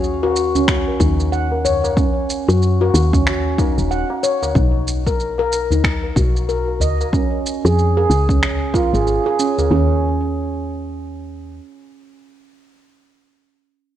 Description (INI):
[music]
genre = organic downtempo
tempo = 93 BPM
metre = 4/4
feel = swing 60% on 16ths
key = Eb minor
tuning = A4 = 440 Hz
[part]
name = handpan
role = arpeggios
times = 0.0-10.0 s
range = Db4 to Gb5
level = -19 LUFS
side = equal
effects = digital delay
[part]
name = woody FM bass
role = bass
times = 0.0-11.6 s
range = Eb1 to Gb2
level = -20 LUFS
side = equal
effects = sidechain pumping
[part]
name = electronic shaker and finger snaps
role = drums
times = 0.0-9.7 s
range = none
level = -24 LUFS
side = right 1 dB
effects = none
[part]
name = tabla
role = percussion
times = 0.2-9.7 s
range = none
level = -25 LUFS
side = left 1 dB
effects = none
[part]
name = electronic kick drum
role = drums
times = 0.7-8.9 s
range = none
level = -20 LUFS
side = equal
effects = overdrive
[sound]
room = light reverb, small room ambience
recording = worn, warbling old tape, cassette tape, warbly pitch drift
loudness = -15 LUFS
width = side -11 dB against mid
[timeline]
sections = 0.0-9.7 A section; 9.7-12.3 B section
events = filter sweep on FM bass 0.0-9.7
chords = 0.0 Ebm7; 4.5 Bmaj7; 7.1 Db; 9.7 N.C.